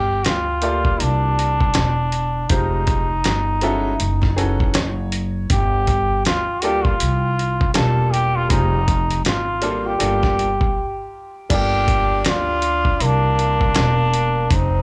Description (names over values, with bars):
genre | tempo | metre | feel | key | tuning
hip hop, jazz-hop | 80 BPM | 4/4 | swing 60% on 16ths | unclear | A4 = 440 Hz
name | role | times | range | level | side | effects
trombone with metal mute | melody | 0.0-14.8 s | D4 to A4 | -24 LUFS | equal | analog delay
upright bass | bass | 0.0-14.8 s | E1 to D2 | -24 LUFS | equal | none
dusty soul sampler-style drum kit | drums | 0.2-14.7 s | crash cymbal, hi-hat, kick drum, snare drum | -23 LUFS | equal | vintage 12-bit sampler grit
bright upright piano | accompaniment | 0.6-12.6 s | E3 to D5 | -27 LUFS | equal | none
breathy tenor saxophone | second line | 11.5-14.8 s | Bb3 to D4 | -28 LUFS | equal | none
room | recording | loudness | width
little or no reverb | dry, gritty hardware recording, small room reverb | -19 LUFS | mono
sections
0.0-11.5 A section; 11.5-14.8 A section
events
upright piano fill 4.4-5.5; break 10.8-11.5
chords
0.0 Gm9; 2.5 Fm9; 4.0 F#m9; 5.5 Gm9; 8.5 Fm9; 10.0 Gm9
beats
0.25 1.00 1.75 | 2.50 3.25 4.00 4.75 | 5.50 6.25 7.00 7.75 | 8.50 9.25 10.00 10.75 | 11.50 12.25 13.00 13.75 | 14.50